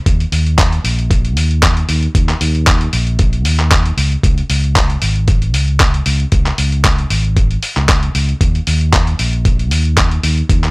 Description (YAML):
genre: nu-disco, nu disco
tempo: 115 BPM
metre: 4/4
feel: swing 54% on 16ths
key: unclear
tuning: A4 = 440 Hz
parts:
  - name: fingered electric bass with an envelope filter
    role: bass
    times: 0.1-10.7 s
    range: Ab1 to Eb2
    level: -14 LUFS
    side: equal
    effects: none
  - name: dusty soul sampler-style drum kit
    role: drums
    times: 0.1-10.7 s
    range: handclaps, hi-hat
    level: -17 LUFS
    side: equal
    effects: overdrive
  - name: electronic kick drum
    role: drums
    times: 0.1-10.6 s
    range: none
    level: -13 LUFS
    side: equal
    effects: overdrive
room: little or no reverb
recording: dry, gritty hardware recording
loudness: -11 LUFS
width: side -27 dB against mid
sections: 0.0-10.7 A section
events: none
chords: none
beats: | 0.06 0.58 1.11 1.63 | 2.15 2.67 3.19 3.71 | 4.24 4.76 5.28 5.80 | 6.32 6.85 7.37 7.89 | 8.41 8.93 9.45 9.98 | 10.50